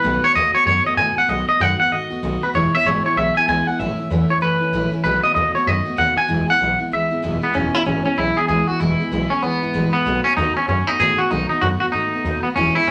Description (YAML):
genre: rockabilly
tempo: 192 BPM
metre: 4/4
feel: swing 62% on 8ths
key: E major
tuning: A4 = 440 Hz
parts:
  - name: twangy electric guitar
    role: melody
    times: 0.0-12.9 s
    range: B3 to G#5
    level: -20 LUFS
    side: equal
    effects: none
  - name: picked steel-string acoustic guitar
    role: accompaniment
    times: 0.0-12.9 s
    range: E2 to F#4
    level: -26 LUFS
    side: equal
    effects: none
  - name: upright bass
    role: bass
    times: 0.0-12.9 s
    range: E1 to A2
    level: -28 LUFS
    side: equal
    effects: none
room: wet studio reverb, RT60 0.8 s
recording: none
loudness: -19 LUFS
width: mono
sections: 0.0-7.5 A section; 7.5-12.9 A section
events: none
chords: 0.0 B7; 2.5 E; 3.8 A; 5.0 B7; 6.3 E; 10.1 B7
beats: | 0.03 0.34 0.66 0.97 | 1.28 1.60 1.91 2.22 | 2.54 2.85 3.16 3.47 | 3.79 4.10 4.41 4.73 | 5.04 5.35 5.67 5.98 | 6.29 6.61 6.92 7.23 | 7.54 7.86 8.17 8.48 | 8.80 9.11 9.43 9.74 | 10.05 10.37 10.68 10.99 | 11.30 11.62 11.93 12.25 | 12.56 12.87